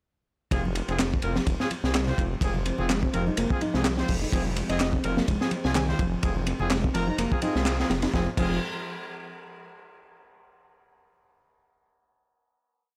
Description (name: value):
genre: breakbeat, breaks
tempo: 126 BPM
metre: 4/4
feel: swing 55% on 16ths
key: F minor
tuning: A4 = 438 Hz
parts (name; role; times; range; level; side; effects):
- phased analog pad; sustained chords; 0.5-8.4 s; F3 to C4; -40 LUFS; equal; none
- clear horn section; stabs; 0.5-8.6 s; C4 to C5; -36 LUFS; equal; vintage 12-bit sampler grit, tape echo
- detuned saw bass; bass; 0.5-8.6 s; F1 to C2; -32 LUFS; equal; none
- crunchy breakbeat drum kit; drums; 0.5-8.5 s; crash cymbal, hi-hat, kick drum, ride cymbal, snare drum; -30 LUFS; equal; none
- congas; percussion; 0.7-8.0 s; none; -38 LUFS; equal; none
- electronic handclaps; drums; 1.0-7.8 s; none; -37 LUFS; equal; overdrive
- mellow reed electric piano; riff; 2.7-8.6 s; Eb3 to Eb4; -34 LUFS; equal; fast tremolo, tube saturation, tape echo
- plucky unison lead; melody; 4.7-7.3 s; Eb5 to Bb5; -40 LUFS; equal; old record sound, tape echo
room: studio reverb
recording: dry, gritty hardware recording, transformer saturation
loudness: -26 LUFS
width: mono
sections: 0.5-8.1 groove; 8.1-10.0 final chord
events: band accent 7.7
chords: 0.5 Fm